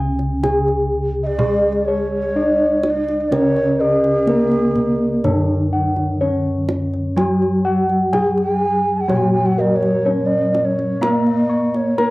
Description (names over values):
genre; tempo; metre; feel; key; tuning
Javanese gamelan; 62 BPM; 4/4; straight; C# pelog barang; A4 = 440 Hz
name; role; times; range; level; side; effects
gamelan-type bronze metallophone; melody; 0.0-12.1 s; A#3+20c to A#4+20c; -20 LUFS; equal; cassette tape
gamelan-type bronze metallophone; accompaniment; 0.0-12.1 s; C#3 to A#3+20c; -23 LUFS; equal; cassette tape
gamelan-type bossed gongs; arpeggios; 0.0-12.1 s; A#4+20c to C#6; -22 LUFS; left 1 dB; cassette tape
gamelan-type bossed gongs; bass; 0.0-12.1 s; C#2 to A#4+20c; -25 LUFS; equal; none
kendang; percussion; 0.2-12.1 s; none; -27 LUFS; right 2 dB; none
breathy mellow bass bansuri; second line; 1.2-12.1 s; G#4-39c to G#5+31c; -21 LUFS; right 1 dB; cassette tape
room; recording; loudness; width
wet spring reverb, RT60 1.1 s, studio ambience; home recording on cassette; -15 LUFS; side -20 dB against mid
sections
0.0-12.1 A section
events
none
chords
none